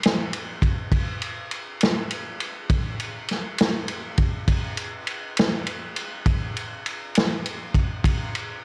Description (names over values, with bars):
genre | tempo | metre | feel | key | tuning
blues | 67 BPM (dotted quarters) | 12/8 | straight | none | none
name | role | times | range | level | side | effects
vintage drum kit | drums | 0.0-8.5 s | kick drum, ride cymbal, snare drum | -25 LUFS | equal | none
room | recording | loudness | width
light reverb | cassette tape | -25 LUFS | mono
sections
0.0-8.6 A section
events
none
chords
none